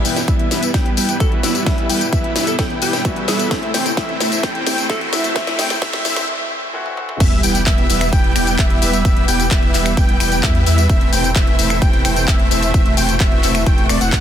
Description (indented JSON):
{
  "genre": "EDM, festival progressive house",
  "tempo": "130 BPM",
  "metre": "4/4",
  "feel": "straight",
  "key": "E minor",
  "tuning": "A4 = 440 Hz",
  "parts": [
    { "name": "clear baby grand piano", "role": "accompaniment", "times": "0.0-7.2 s", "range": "E3 to F#4", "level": "-28 LUFS", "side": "left 2 dB", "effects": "sidechain pumping, tape echo" },
    { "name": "muted chamber string section", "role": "sustained chords", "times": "0.0-14.2 s", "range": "E2 to G4", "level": "-28 LUFS", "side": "equal", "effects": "sidechain pumping" },
    { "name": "wide unison lead", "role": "arpeggios", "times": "0.0-14.2 s", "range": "D5 to G5", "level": "-23 LUFS", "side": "right 1 dB", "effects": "sidechain pumping, tape echo" },
    { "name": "dense compressed supersaw", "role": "riff", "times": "0.0-14.2 s", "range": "G3 to G5", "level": "-21 LUFS", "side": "right 1 dB", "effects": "cassette tape, sidechain pumping, low-pass filter, tape echo" },
    { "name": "house drum kit", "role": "drums", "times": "0.0-14.2 s", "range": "crash cymbal, finger snaps, handclaps, hi-hat, snare drum, tambourine, toms", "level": "-21 LUFS", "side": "left 3 dB", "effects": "high-pass filter on hats, high-pass filter on snare, high-pass filter on perc, high-pass filter on toms, high-pass filter on cymbals, high-pass filter on room" },
    { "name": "riser and sub drop", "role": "sound effects", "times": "0.0-9.0 s", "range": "none", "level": "-29 LUFS", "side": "equal", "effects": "none" },
    { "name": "electronic kick drum", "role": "drums", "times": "0.3-14.2 s", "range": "none", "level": "-16 LUFS", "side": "equal", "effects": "none" },
    { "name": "breathy alto saxophone", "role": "melody", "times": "1.2-5.7 s", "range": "E4 to A4", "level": "-28 LUFS", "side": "right 2 dB", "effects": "none" },
    { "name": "saturated sub bass", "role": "bass", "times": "7.2-14.2 s", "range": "E1 to E2", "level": "-20 LUFS", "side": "equal", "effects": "sidechain pumping" }
  ],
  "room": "light reverb",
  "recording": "dense, heavily limited modern master, high-pass filter",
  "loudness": "-14 LUFS",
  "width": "side -10 dB against mid",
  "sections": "0.0-7.2 A section; 7.2-14.2 B section",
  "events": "build-up 0.0-7.2; drum fill 0.0-6.3, 6.9-7.2; riser 0.0-6.3; filter sweep on supersaw synth 0.0-7.2; filter sweep on analog synth lead 0.0-7.2; filter sweep 0.0-7.2; break 6.3-7.2; drop 7.2-14.2; impact 7.2-9.0",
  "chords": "0.0 Em; 3.5 Am/E; 7.2 Em; 10.9 Am/E"
}